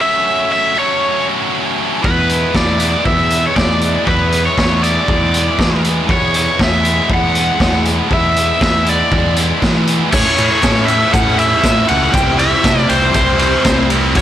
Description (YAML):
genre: indie rock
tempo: 119 BPM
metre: 4/4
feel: straight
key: unclear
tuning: A4 = 440 Hz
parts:
  - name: crunchy overdriven guitar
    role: melody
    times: 0.0-14.2 s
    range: B4 to G5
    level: -16 LUFS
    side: equal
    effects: tape echo
  - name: heavy high-gain guitar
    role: riff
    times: 0.0-14.2 s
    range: A2 to F#4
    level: -18 LUFS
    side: equal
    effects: distortion
  - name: fuzz fingered electric bass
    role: bass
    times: 2.0-14.2 s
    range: C2 to E3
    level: -18 LUFS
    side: equal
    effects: overdrive
  - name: raw garage drum kit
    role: drums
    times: 2.0-14.2 s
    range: crash cymbal, hi-hat, kick drum, ride cymbal, snare drum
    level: -16 LUFS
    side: equal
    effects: none
  - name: phased string machine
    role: sustained chords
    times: 10.1-14.2 s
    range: B3 to E5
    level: -24 LUFS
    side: left 1 dB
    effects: ensemble chorus, phaser
  - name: tube shaker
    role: percussion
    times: 10.1-14.2 s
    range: none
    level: -34 LUFS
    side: right 9 dB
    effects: none
room: small room reverb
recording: blown-out, overdriven recording, overdrive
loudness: -11 LUFS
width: side -11 dB against mid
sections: 0.0-10.1 A section; 10.1-14.2 B section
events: none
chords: 0.0 F#m7; 2.0 E7; 10.1 A; 12.1 C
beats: | 0.02 0.52 1.03 1.54 | 2.04 2.55 3.06 3.56 | 4.07 4.57 5.08 5.58 | 6.09 6.59 7.10 7.60 | 8.11 8.61 9.12 9.62 | 10.13 10.63 11.14 11.64 | 12.14 12.65 13.15 13.66 | 14.16